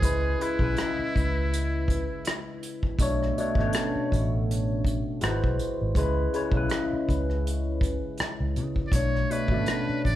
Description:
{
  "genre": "R&B, neo-soul",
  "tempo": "81 BPM",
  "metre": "4/4",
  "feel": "swing 56% on 16ths",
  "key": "unclear",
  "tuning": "A4 = 442 Hz",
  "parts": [
    { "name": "trumpet with metal mute", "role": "melody", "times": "0.0-2.6, 8.9-10.2 s", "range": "E4 to D5", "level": "-32 LUFS", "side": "equal", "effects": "tape echo" },
    { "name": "barky tine electric piano", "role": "accompaniment", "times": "0.0-10.2 s", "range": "B2 to D5", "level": "-28 LUFS", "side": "left 1 dB", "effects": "phaser" },
    { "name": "vintage muted fingered electric bass", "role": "bass", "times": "0.0-10.2 s", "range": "G#1 to C#3", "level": "-28 LUFS", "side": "equal", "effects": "none" },
    { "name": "unplugged drum kit", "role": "drums", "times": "0.0-10.2 s", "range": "hi-hat, kick drum, rim click", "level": "-28 LUFS", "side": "equal", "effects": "none" }
  ],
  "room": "moderate large studio reverb, RT60 1.3 s",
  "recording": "band playing live in one room",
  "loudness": "-24 LUFS",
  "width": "side -13 dB against mid",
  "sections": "0.0-10.2 A section",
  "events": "none",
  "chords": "0.0 C#m7; 3.0 Bm9; 5.2 G#7alt; 6.0 C#m7; 8.9 Bm9"
}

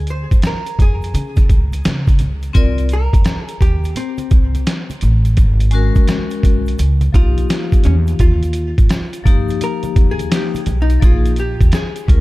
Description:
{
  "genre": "hip hop, jazz-hop",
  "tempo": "85 BPM",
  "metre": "4/4",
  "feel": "swing 66% on 16ths",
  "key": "C minor",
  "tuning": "A4 = 440 Hz",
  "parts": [
    { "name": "hollow-body jazz guitar", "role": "melody", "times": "0.0-12.2 s", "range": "C4 to C5", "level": "-25 LUFS", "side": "left 1 dB", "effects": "diffuse ambient delay" },
    { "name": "upright bass", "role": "bass", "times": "0.0-12.2 s", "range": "Ab1 to Db3", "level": "-16 LUFS", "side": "equal", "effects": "none" },
    { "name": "trip hop sampler-style drum kit", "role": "drums", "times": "0.1-12.2 s", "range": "hi-hat, kick drum, snare drum", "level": "-14 LUFS", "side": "equal", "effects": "none" },
    { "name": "egg shaker and congas", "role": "percussion", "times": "0.1-12.2 s", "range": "none", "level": "-30 LUFS", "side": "right 4 dB", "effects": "none" },
    { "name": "vibraphone with hard mallets", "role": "accompaniment", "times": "2.5-12.2 s", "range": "F3 to D5", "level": "-23 LUFS", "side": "left 7 dB", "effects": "none" }
  ],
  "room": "little or no reverb",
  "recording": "none",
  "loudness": "-13 LUFS",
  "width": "side -19 dB against mid",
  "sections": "0.0-2.6 A section; 2.6-12.2 B section",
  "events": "break 0.0-2.6; hollow-body jazz guitar solo 2.6-12.2",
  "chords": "0.0 Dm7b5; 1.1 Db5; 2.6 C7(no3); 5.4 Abm7; 6.8 Db9; 8.2 Ebadd9; 11.0 Bbm7"
}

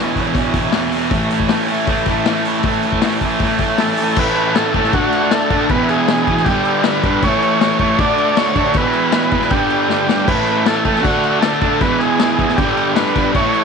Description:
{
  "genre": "garage rock duo or trio",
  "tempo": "157 BPM",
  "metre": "4/4",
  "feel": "straight",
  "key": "unclear",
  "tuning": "A4 = 440 Hz",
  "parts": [
    { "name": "overdriven combo organ", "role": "sustained chords", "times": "0.0-13.6 s", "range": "C#4 to D5", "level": "-26 LUFS", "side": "right 10 dB", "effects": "wide subtle chorus" },
    { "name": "thick fuzz guitar", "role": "riff", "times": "0.0-13.6 s", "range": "E2 to D4", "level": "-16 LUFS", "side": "right 1 dB", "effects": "distortion" },
    { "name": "vintage drum kit", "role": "drums", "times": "0.2-13.6 s", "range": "crash cymbal, hi-hat, kick drum, snare drum", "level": "-19 LUFS", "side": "left 4 dB", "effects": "none" },
    { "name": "overdriven combo organ", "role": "melody", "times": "3.8-13.6 s", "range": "F#4 to D5", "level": "-19 LUFS", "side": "right 2 dB", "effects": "none" }
  ],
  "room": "light reverb, small room ambience",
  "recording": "1960s-style stereo",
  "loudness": "-13 LUFS",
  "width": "side -5 dB against mid",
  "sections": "0.0-4.2 A section; 4.2-13.6 B section",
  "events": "drum fill 9.9-10.3",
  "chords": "0.0 E; 1.1 A; 4.9 D; 5.7 E; 6.5 G; 7.2 A; 8.0 D; 8.8 E; 9.5 G; 10.3 A; 11.0 D; 11.8 E; 12.6 G"
}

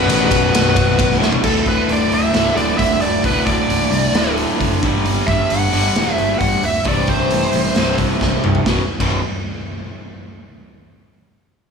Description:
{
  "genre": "hard rock",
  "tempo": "133 BPM",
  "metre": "4/4",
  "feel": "straight",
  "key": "B phrygian",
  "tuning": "A4 = 440 Hz",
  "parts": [
    { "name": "bluesy overdriven lead guitar", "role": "melody", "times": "0.0-8.0 s", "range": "A4 to F#5", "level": "-20 LUFS", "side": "equal", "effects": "distortion" },
    { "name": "octave-fuzz lead guitar", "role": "second line", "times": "0.0-1.2 s", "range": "F#4", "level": "-26 LUFS", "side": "right 3 dB", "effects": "distortion, analog delay" },
    { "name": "cranked stack guitar", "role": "riff", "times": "0.0-9.2 s", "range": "B1 to G3", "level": "-18 LUFS", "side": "equal", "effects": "overdrive" },
    { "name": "modern bright picked electric bass", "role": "bass", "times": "0.0-9.2 s", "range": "B0 to C2", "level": "-22 LUFS", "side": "equal", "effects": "none" },
    { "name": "raw garage drum kit", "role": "drums", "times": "0.1-9.1 s", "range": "crash cymbal, hi-hat, kick drum, ride cymbal, snare drum, toms", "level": "-20 LUFS", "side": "equal", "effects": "none" }
  ],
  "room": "light reverb, studio reverb",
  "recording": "studio ambience",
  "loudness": "-14 LUFS",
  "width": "side -6 dB against mid",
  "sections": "0.0-1.4 A section; 1.4-8.7 B section; 8.7-10.5 C section",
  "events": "drum fill 1.2, 8.2-8.7; lead electric guitar solo 1.4-8.7",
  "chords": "0.0 Bm; 1.4 D5; 4.8 G5; 6.9 C5; 8.7 B5"
}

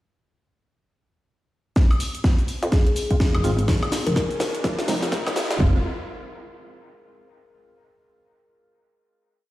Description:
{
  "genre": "bass house",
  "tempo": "125 BPM",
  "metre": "4/4",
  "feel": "swing 60% on 16ths",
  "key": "F minor",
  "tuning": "A4 = 440 Hz",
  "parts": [
    { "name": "hollow knocking FM bass", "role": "bass", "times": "1.8-5.8 s", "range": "F1 to F2", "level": "-27 LUFS", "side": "equal", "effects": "overdrive, sidechain pumping, high-pass filter" },
    { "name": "house drum kit", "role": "drums", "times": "1.8-5.7 s", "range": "kick drum, toms", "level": "-20 LUFS", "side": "equal", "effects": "none" },
    { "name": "house drum kit", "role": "drums", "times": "1.8-5.6 s", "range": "hi-hat, shaker, snare drum, woodblock", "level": "-27 LUFS", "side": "equal", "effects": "none" },
    { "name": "riser", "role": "sound effects", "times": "2.9-5.6 s", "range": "none", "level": "-34 LUFS", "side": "equal", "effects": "none" },
    { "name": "kalimba", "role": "melody", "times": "2.7-4.3 s", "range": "Ab4 to Bb4", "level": "-31 LUFS", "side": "left 3 dB", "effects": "dub echo" },
    { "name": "percussive organ stab", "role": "stabs", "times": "3.1-5.8 s", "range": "Ab3 to F4", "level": "-32 LUFS", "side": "right 1 dB", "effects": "chorus, phaser, sidechain pumping, dub echo" },
    { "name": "pulsing pluck wobble bass", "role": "bass", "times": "3.3-5.2 s", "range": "F1 to Ab1", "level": "-23 LUFS", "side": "equal", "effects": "chorus, sidechain pumping" }
  ],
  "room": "light reverb",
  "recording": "played on a big sound system in a bare room, stone room reverb, high-pass filter",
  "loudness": "-19 LUFS",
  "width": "side -16 dB against mid",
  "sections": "1.8-5.6 build; 5.6-7.5 final chord",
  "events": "build-up 1.8-5.6; drum fill 1.8-5.6; filter sweep 1.8-5.6; riser 2.9-5.6",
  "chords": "1.8 Fm"
}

